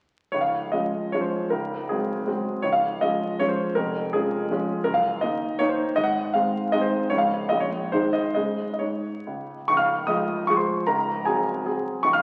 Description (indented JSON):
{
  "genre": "classical, romantic triple-time dance for piano with dotted rhythms",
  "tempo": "128-172 BPM",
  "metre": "3/4",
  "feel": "rubato",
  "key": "Db major",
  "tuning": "A4 = 440 Hz",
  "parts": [
    { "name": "clear concert grand piano", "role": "solo", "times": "0.3-12.2 s", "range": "Db1 to F6", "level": "-24 LUFS", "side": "equal", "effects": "none" }
  ],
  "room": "wet recital hall reverb, RT60 1.5 s",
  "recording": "very old 78 rpm record, vinyl crackle",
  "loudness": "-25 LUFS",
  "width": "mono",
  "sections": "0.3-9.7 A section; 9.7-12.2 A section",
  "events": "none",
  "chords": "0.3 Db; 1.5 Ab7/Db; 2.6 Db; 3.8 Db/F; 4.8 Ebm/Gb; 6.0 Ab; 7.1 Db; 7.5 Bbm7; 7.9 Ab; 8.4 Db5; 9.7 Db; 10.9 Ab7/Db"
}